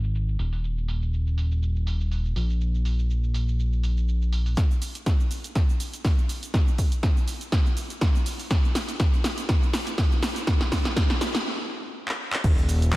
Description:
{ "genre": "piano house", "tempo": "122 BPM", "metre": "4/4", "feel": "swing 55% on 16ths", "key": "unclear", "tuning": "A4 = 444 Hz", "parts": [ { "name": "fat analog bass", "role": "bass", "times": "0.0-4.6, 12.4-13.0 s", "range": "Eb1 to Bb1", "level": "-23 LUFS", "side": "equal", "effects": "sidechain pumping" }, { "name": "punchy analog drum machine", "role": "drums", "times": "0.0-13.0 s", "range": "crash cymbal, handclaps, hi-hat, shaker, snare drum", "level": "-29 LUFS", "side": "equal", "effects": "low-pass filter on hats, low-pass filter on perc, low-pass filter on snare, low-pass filter on cymbals" }, { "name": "electronic kick drum", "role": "drums", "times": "4.6-13.0 s", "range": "none", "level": "-22 LUFS", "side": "equal", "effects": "none" } ], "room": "light reverb, digital ambience", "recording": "low-pass filter", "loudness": "-22 LUFS", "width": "side -18 dB against mid", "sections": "0.0-4.6 A section; 4.6-12.4 B section", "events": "build-up 4.6-12.4; drum fill 4.6-11.5, 12.1-12.4; stop 11.5-12.4", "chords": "none" }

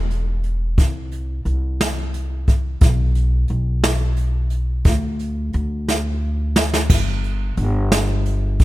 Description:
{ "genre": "six-eight pop ballad", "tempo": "59 BPM (dotted quarters)", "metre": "6/8", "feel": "straight", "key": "G major", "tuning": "A4 = 440 Hz", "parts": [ { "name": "upright bass", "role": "bass", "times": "0.0-8.6 s", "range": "E1 to D2", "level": "-20 LUFS", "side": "equal", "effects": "none" }, { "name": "jazz brush drum kit", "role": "drums", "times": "0.1-8.6 s", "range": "crash cymbal, hi-hat, kick drum, snare drum", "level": "-17 LUFS", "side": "equal", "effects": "none" } ], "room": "little or no reverb", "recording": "none", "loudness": "-17 LUFS", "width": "side -17 dB against mid", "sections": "0.0-6.9 A section; 6.9-8.6 B section", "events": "drum fill 5.9-6.9", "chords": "none" }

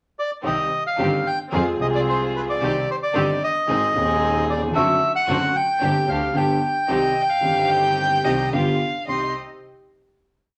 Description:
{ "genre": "tango", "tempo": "112 BPM", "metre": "4/4", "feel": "rubato", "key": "C minor", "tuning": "A4 = 440 Hz", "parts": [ { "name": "bandoneon", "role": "melody", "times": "0.2-9.3 s", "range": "B4 to C6", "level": "-24 LUFS", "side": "equal", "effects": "none" }, { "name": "warm grand piano", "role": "accompaniment", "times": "0.4-9.3 s", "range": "Eb1 to Ab4", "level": "-27 LUFS", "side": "equal", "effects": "none" }, { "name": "warm studio string section", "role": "stabs", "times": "0.4-9.3 s", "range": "B3 to Ab4", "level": "-29 LUFS", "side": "equal", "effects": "none" }, { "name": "clear double bass", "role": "bass", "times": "0.4-9.3 s", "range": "F#1 to F2", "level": "-31 LUFS", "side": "equal", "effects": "none" }, { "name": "warm violin", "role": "second line", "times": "6.9-9.3 s", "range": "Eb5 to G5", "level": "-28 LUFS", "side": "equal", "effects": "none" } ], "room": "wet studio reverb, RT60 0.8 s", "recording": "none", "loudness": "-21 LUFS", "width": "mono", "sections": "0.0-0.4 pickup bar; 0.4-9.1 A section; 9.1-10.6 final chord", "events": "none", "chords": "0.4 Cm; 1.5 Fm; 2.6 Cm; 3.7 Ab; 4.7 D7/F#; 5.8 Gsus4; 6.3 G; 6.9 Cm; 8.5 G7; 9.1 Cm" }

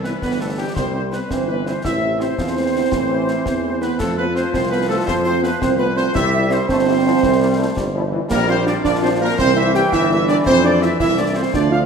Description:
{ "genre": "military-style march for wind band", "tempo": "111 BPM (dotted quarters)", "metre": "6/8", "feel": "straight", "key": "C major, F major from 8.3 s", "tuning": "A4 = 440 Hz", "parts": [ { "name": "clear trumpet section", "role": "melody", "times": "0.0-11.8 s", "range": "G4 to G5", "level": "-25 LUFS", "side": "left 2 dB", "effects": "none" }, { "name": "dark euphonium", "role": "second line", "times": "0.0-11.9 s", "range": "G3 to G4", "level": "-20 LUFS", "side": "right 4 dB", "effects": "none" }, { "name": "dark woodwind section", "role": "second line", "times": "0.0-11.8 s", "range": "G4 to G5", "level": "-24 LUFS", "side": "left 1 dB", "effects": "none" }, { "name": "warm trombone section", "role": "sustained chords", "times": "0.0-11.9 s", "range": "C3 to A3", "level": "-25 LUFS", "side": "equal", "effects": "none" }, { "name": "warm tuba", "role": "bass", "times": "0.0-11.9 s", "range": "G1 to F2", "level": "-22 LUFS", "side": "right 1 dB", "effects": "none" }, { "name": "concert snare drum, concert bass drum and clash cymbals", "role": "drums", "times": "0.0-11.7 s", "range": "none", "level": "-28 LUFS", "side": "left 3 dB", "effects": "none" }, { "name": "mellow French horn section", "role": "accompaniment", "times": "0.1-11.8 s", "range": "G3 to F4", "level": "-28 LUFS", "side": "left 5 dB", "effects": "none" } ], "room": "wet scoring stage reverb, RT60 1.4 s", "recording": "minimal, uncompressed stereo recording", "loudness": "-15 LUFS", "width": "side -6 dB against mid", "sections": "0.0-11.9 A section", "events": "none", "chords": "0.0 C; 1.8 Am; 4.0 F; 6.2 C; 8.3 Gm7/Bb; 9.4 C7; 10.5 F" }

